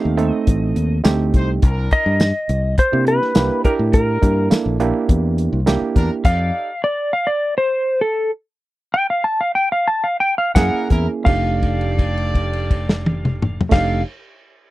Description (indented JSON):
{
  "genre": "straight-eighth soul blues",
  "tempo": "83-104 BPM",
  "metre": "4/4",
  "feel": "straight",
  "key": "F mixolydian",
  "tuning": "A4 = 440 Hz",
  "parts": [
    { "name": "clean lap steel guitar", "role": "melody", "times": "0.0-14.0 s", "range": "A4 to A5", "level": "-19 LUFS", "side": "left 1 dB", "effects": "none" },
    { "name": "overdriven reed electric piano", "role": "accompaniment", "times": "0.0-6.2, 10.6-14.0 s", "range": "A3 to Bb4", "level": "-22 LUFS", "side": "right 5 dB", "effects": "none" },
    { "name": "fingered electric bass", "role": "bass", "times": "0.1-6.5, 10.6-14.0 s", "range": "F1 to C3", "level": "-20 LUFS", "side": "equal", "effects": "none" },
    { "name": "warm soul drum kit", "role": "drums", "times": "0.2-6.4, 10.6-13.9 s", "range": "crash cymbal, hi-hat, kick drum, snare drum, tambourine, toms", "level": "-16 LUFS", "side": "equal", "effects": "none" },
    { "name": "clear horn section", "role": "sustained chords", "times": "1.3-6.7, 10.5-14.0 s", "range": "D4 to D5", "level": "-29 LUFS", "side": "right 1 dB", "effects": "none" }
  ],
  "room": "little or no reverb",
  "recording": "dry, close 1970s-style studio recording",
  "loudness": "-16 LUFS",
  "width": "side -17 dB against mid",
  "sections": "0.0-11.3 A section; 11.3-14.1 B section",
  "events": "slowing down 6.2-11.3; stop 6.2-10.6; held note 11.3-13.7",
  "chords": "0.0 F9; 1.6 C9; 6.2 F13; 10.6 Gb9; 11.3 F13",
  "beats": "0.47 1.05 | 1.63 2.20 2.78 3.36 | 3.94 4.51 5.09 5.67 | 6.24 6.82 7.41 8.00 | 8.61 9.24 9.89 10.56 | 11.26 11.98 12.71 13.43"
}